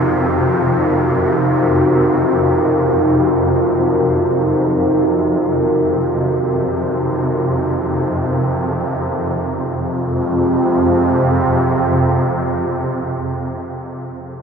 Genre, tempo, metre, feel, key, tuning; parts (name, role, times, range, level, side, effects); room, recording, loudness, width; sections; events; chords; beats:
dark ambient drone; free time; F phrygian; A4 = 440 Hz
deep dark ambient pad; sustained chords; 0.0-13.7 s; C4 to F5; -17 LUFS; equal; chorus, built-in reverb
swarming drone; drone; 0.0-13.8 s; F2 to C3; -17 LUFS; equal; built-in reverb
wet huge ambient reverb, RT60 8.1 s; -14 LUFS; side -6 dB against mid
0.0-9.1 A section; 9.1-12.9 B section
0.0 Ebmadd9/F; 9.1 Fm
free time